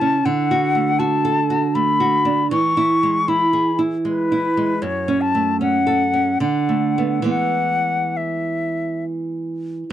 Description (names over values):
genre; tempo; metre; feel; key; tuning
romantic duo for flute and classical guitar; 66-80 BPM; 3/4; rubato; unclear; A4 = 440 Hz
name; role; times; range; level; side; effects
silver concert flute; melody; 0.0-9.9 s; B4 to C#6; -20 LUFS; left 4 dB; none
nylon-string guitar; accompaniment; 0.0-9.8 s; F#2 to A4; -19 LUFS; right 3 dB; none
room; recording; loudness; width
little or no reverb; dry, close 1970s-style studio recording; -17 LUFS; side -11 dB against mid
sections
0.0-9.9 A section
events
none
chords
0.3 Bm7/D; 2.5 E; 4.8 F#m; 6.4 Bm7/D; 7.3 E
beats
| 0.25 1.00 1.75 | 2.52 3.28 4.05 | 4.82 5.60 6.40 | 7.27 8.17 9.05 | 9.90